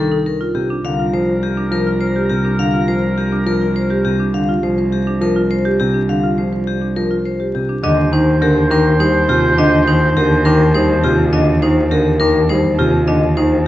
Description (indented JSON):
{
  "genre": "classical, minimalist pattern music",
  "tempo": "103 BPM",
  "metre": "3/4",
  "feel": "straight",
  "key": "Eb major from 7.8 s",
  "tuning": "A4 = 441 Hz",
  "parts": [
    { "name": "vibraphone with hard mallets", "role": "melody", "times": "0.0-13.6 s", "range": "G4 to F5", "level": "-21 LUFS", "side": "left 6 dB", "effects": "none" },
    { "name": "warm baby grand piano", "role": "accompaniment", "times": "0.0-13.6 s", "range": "C3 to G3", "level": "-19 LUFS", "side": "equal", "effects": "none" },
    { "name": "rich cello", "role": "bass", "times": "0.0-13.7 s", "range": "C2 to Eb2", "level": "-18 LUFS", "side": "equal", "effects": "none" },
    { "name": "marimba with medium hard mallets", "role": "arpeggios", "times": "0.1-13.6 s", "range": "D4 to C5", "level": "-20 LUFS", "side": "right 2 dB", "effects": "none" },
    { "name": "warm oboe", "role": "second line", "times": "0.8-4.2, 7.8-11.1 s", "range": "Bb4 to C5", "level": "-22 LUFS", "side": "right 1 dB", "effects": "none" }
  ],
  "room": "moderate recital hall reverb, RT60 1.6 s",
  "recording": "vinyl crackle, nothing above 8.0 kHz",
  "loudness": "-13 LUFS",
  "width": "side -14 dB against mid",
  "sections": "0.0-7.8 A section; 7.8-13.7 B section",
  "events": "none",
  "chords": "0.0 Cm11; 0.8 Gm7/C; 7.8 Eb5",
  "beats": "0.26 | 0.84 1.43 2.01 | 2.59 3.17 3.76 | 4.34 4.92 5.50 | 6.09 6.67 7.25 | 7.83 8.42 9.00 | 9.58 10.16 10.75 | 11.33 11.91 12.49 | 13.08 13.66"
}